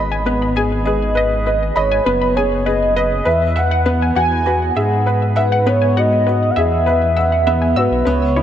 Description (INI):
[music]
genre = piano and strings electronica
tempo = 100 BPM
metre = 4/4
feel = straight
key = unclear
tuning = A4 = 441 Hz
[part]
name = warbly dusty pluck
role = arpeggios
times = 0.0-8.4 s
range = B4 to E6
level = -23 LUFS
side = left 3 dB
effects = chorus, ping-pong delay
[part]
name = felt-muted upright piano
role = riff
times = 0.0-8.4 s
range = B3 to B5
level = -19 LUFS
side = equal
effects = ping-pong delay
[part]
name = dark detuned saw bass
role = bass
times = 0.0-8.4 s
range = F#1 to G#2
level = -19 LUFS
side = equal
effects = none
[part]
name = warm velvety synth lead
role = melody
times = 0.9-8.4 s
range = B4 to G#5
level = -18 LUFS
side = right 1 dB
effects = chorus
[sound]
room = moderate huge ambient reverb, RT60 4.0 s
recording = none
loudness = -14 LUFS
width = side -10 dB against mid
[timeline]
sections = 0.0-8.4 A section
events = none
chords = 0.0 G#m; 3.3 Eadd9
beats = 0.26 | 0.86 1.46 2.06 2.66 | 3.26 3.86 4.46 5.06 | 5.66 6.26 6.86 7.46 | 8.06